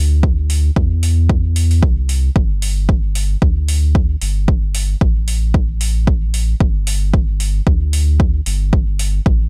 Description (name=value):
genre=dub techno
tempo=113 BPM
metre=4/4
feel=swing 56% on 16ths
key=unclear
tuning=A4 = 443 Hz
part: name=round analog bass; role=bass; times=0.0-9.5 s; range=G1 to E2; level=-18 LUFS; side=equal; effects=transformer saturation, sidechain pumping
part: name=electronic kick drum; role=drums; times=0.2-9.4 s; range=none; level=-17 LUFS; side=equal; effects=overdrive
part: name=electronic hi-hat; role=drums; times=0.5-9.1 s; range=none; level=-27 LUFS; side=equal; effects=overdrive
room=little or no reverb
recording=dry, gritty hardware recording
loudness=-16 LUFS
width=mono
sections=0.0-9.5 A section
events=none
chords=none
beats=| 0.23 0.76 1.29 1.83 | 2.36 2.89 3.42 3.95 | 4.48 5.01 5.54 6.07 | 6.61 7.14 7.67 8.20 | 8.73 9.26